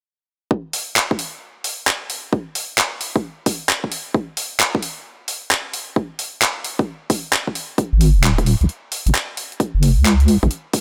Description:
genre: UK garage, two-step garage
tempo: 132 BPM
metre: 4/4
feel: swing 65% on 16ths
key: G# minor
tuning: A4 = 440 Hz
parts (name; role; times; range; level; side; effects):
- electronic kick drum; drums; 0.5-10.8 s; none; -22 LUFS; equal; high-pass filter on kick
- breakbeat sampler-style drum kit; drums; 0.7-10.8 s; handclaps, hi-hat; -23 LUFS; equal; none
- deep soft wobble bass; bass; 7.9-10.5 s; D#1 to C#2; -16 LUFS; equal; chorus
room: little or no reverb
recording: none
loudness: -20 LUFS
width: mono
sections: 0.5-10.8 A section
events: none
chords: none

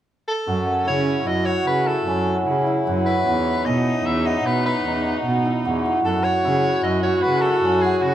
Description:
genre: contemporary instrumental, contemporary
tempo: 151 BPM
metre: 7/4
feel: straight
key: unclear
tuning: A4 = 440 Hz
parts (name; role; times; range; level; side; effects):
- clear soprano saxophone; melody; 0.3-8.1 s; F#4 to E5; -25 LUFS; left 1 dB; none
- dark viola; second line; 0.5-8.1 s; C#4 to F#4; -24 LUFS; equal; none
- hammered dulcimer; arpeggios; 0.5-8.1 s; E3 to F#4; -22 LUFS; equal; none
- warm cello; bass; 0.5-8.1 s; E2 to C#3; -23 LUFS; right 2 dB; none
room: moderate recital hall reverb, RT60 1.3 s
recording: none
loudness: -18 LUFS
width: side -11 dB against mid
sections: 0.5-8.1 A section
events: none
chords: 0.5 F#m7; 3.3 E5; 6.0 F#m7

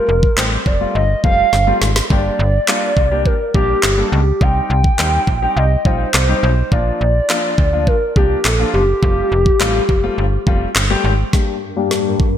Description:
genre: dance-pop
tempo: 104 BPM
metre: 4/4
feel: straight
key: G minor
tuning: A4 = 439 Hz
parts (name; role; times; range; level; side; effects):
- hollow clarinet-like synth lead; melody; 0.0-10.7 s; G4 to G5; -18 LUFS; right 1 dB; chorus, ping-pong delay
- clear baby grand piano; accompaniment; 0.0-12.2 s; F3 to A4; -22 LUFS; left 5 dB; wide subtle chorus, sidechain pumping, low-pass filter
- slap-like FM bass; bass; 0.1-11.2 s; F1 to Eb2; -17 LUFS; equal; sidechain pumping
- smooth R&B drum kit; drums; 0.2-12.3 s; handclaps, kick drum, snare drum; -16 LUFS; equal; gated reverb
- granular cloud pad; sustained chords; 11.6-12.4 s; G2 to Bb4; -23 LUFS; equal; built-in reverb, sidechain pumping, low-pass filter
room: light reverb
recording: bright 1980s-style digital production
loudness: -13 LUFS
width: side -10 dB against mid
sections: 0.0-11.3 A section; 11.3-12.4 B section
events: drum fill 1.5-2.1, 11.3-12.4; build-up 11.3-12.4; filter sweep 11.3-12.4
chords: 0.0 Fadd9; 2.1 Gm; 4.4 Cm; 6.7 Bb; 9.0 Fadd9; 11.3 Gm

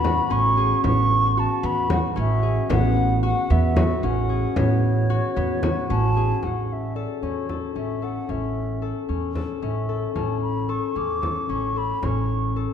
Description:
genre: contemporary instrumental, chamber music in an uneven meter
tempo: 225 BPM (eighths)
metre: 7/8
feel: straight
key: A major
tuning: A4 = 436 Hz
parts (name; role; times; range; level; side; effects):
- hollow wooden flute; melody; 0.0-12.6 s; C#5 to D6; -26 LUFS; right 1 dB; none
- concert harp; arpeggios; 0.0-12.7 s; B3 to A4; -26 LUFS; left 6 dB; none
- upright bass; bass; 0.0-12.6 s; A1 to E2; -24 LUFS; right 2 dB; none
- frame drum; percussion; 0.0-12.7 s; none; -28 LUFS; left 1 dB; none
room: moderate concert hall reverb, RT60 2.4 s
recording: none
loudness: -20 LUFS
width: side -8 dB against mid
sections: 0.0-6.4 A section; 6.4-12.7 B section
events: none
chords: 0.0 A69

